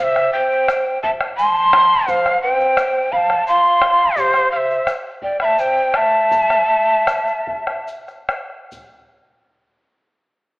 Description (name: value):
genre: andean folk, Andean ensemble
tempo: 69-86 BPM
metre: 3/4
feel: straight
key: A minor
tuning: A4 = 440 Hz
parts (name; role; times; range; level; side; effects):
- breathy quena; melody; 0.0-7.9 s; C5 to C6; -16 LUFS; equal; none
- polished pan flute; second line; 0.0-7.9 s; G4 to A5; -19 LUFS; equal; none
- bombo; percussion; 0.2-9.1 s; none; -24 LUFS; left 1 dB; none
- egg shaker; percussion; 0.2-9.1 s; none; -49 LUFS; left 2 dB; none
room: wet recital hall reverb, RT60 1.8 s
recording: recorded in a church or concert hall, AM radio sound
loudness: -14 LUFS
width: side -25 dB against mid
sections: 0.0-8.7 A section; 8.7-10.6 B section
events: slowing down 4.2-8.7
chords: none